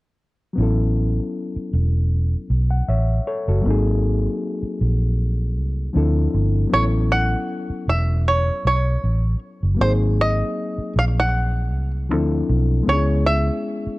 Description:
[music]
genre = R&B, neo-soul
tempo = 78 BPM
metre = 4/4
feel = swing 54% on 16ths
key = A major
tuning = A4 = 443 Hz
[part]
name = overdriven reed electric piano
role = accompaniment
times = 0.5-14.0 s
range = F3 to F#5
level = -25 LUFS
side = left 3 dB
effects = none
[part]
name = vintage muted fingered electric bass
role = bass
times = 0.6-13.9 s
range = E1 to D2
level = -19 LUFS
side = equal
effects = none
[part]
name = bluegrass banjo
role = melody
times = 6.7-14.0 s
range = B#4 to F#5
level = -22 LUFS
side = right 1 dB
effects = none
[sound]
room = studio reverb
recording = dark, warm production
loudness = -18 LUFS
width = side -20 dB against mid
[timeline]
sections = 0.6-6.7 A section; 6.7-14.0 B section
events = none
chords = 0.6 A69; 3.6 G#7; 6.0 Dm7; 6.7 A69; 9.8 G#7; 12.1 Dm7; 12.9 C#m7

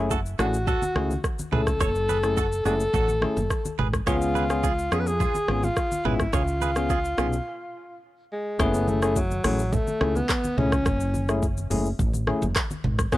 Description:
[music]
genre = afrobeats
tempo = 106 BPM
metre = 4/4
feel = straight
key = F# minor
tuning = A4 = 439 Hz
[part]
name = breathy alto saxophone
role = melody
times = 0.0-13.2 s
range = F#3 to B4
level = -27 LUFS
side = left 1 dB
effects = tape echo
[part]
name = bell-like tine electric piano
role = accompaniment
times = 0.0-13.2 s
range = A3 to G#4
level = -27 LUFS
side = left 3 dB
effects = none
[part]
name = woody fretless electric bass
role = bass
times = 0.0-13.2 s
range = F#1 to E#2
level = -27 LUFS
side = equal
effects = transformer saturation
[part]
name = direct-recorded clean electric guitar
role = riff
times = 0.1-7.3 s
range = C#4 to C#5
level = -32 LUFS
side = right 8 dB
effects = none
[part]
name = afro-pop drum kit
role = drums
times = 0.1-13.2 s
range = handclaps, hi-hat, kick drum, rim click, shaker, toms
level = -27 LUFS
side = equal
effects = none
[part]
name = congas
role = percussion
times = 0.7-13.2 s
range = none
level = -34 LUFS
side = right 1 dB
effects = none
[sound]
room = little or no reverb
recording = dry, gritty hardware recording, cassette tape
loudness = -22 LUFS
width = side -16 dB against mid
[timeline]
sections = 0.0-8.6 A section; 8.6-13.2 B section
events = break 7.5-8.6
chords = 0.0 F#m7; 4.1 C#7; 8.6 F#m7

